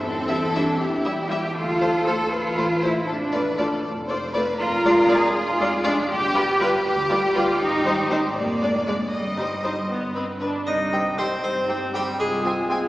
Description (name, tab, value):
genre	cinematic, playful, whimsical film cue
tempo	79 BPM (dotted quarters)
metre	6/8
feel	straight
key	C minor from 4.6 s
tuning	A4 = 438 Hz
part	rich studio violin section	second line	0.0-12.8 s	Eb4 to Eb5	-27 LUFS	left 1 dB	none
part	rich studio cello section	bass	0.0-12.8 s	C2 to B4	-24 LUFS	equal	none
part	rich studio double bass section	bass	0.1-12.8 s	F1 to E2	-34 LUFS	equal	none
part	rich studio violin section	melody	0.3-12.8 s	B4 to Ab5	-30 LUFS	left 1 dB	none
part	rich studio viola section	accompaniment	0.3-12.8 s	G3 to F4	-28 LUFS	equal	none
part	harpsichord	melody	10.7-12.9 s	G4 to Eb5	-27 LUFS	equal	none
part	bright large flute ensemble	second line	10.7-12.9 s	G4 to Eb5	-30 LUFS	equal	none
part	mellow cor anglais	second line	10.7-12.9 s	G3 to Eb4	-28 LUFS	right 1 dB	none
part	mellow French horn section	sustained chords	10.7-12.9 s	C4 to G4	-33 LUFS	left 1 dB	none
part	dark clarinet	second line	10.9-12.8 s	F4 to G4	-34 LUFS	equal	none
part	warm bassoon	accompaniment	10.9-12.8 s	C4	-31 LUFS	right 1 dB	none
room	wet concert hall reverb, RT60 1.9 s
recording	heard from further back in the room, small speaker sound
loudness	-20 LUFS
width	side -17 dB against mid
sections	0.0-10.7 A section; 10.7-12.9 B section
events	none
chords	0.0 C/E; 1.6 Dm7; 3.1 Dm/F; 4.6 Ddim/F; 6.1 G7; 7.6 Abmaj7; 8.4 Ddim/F; 9.1 Cm/G; 9.9 G; 10.7 Cm; 12.2 Fm/C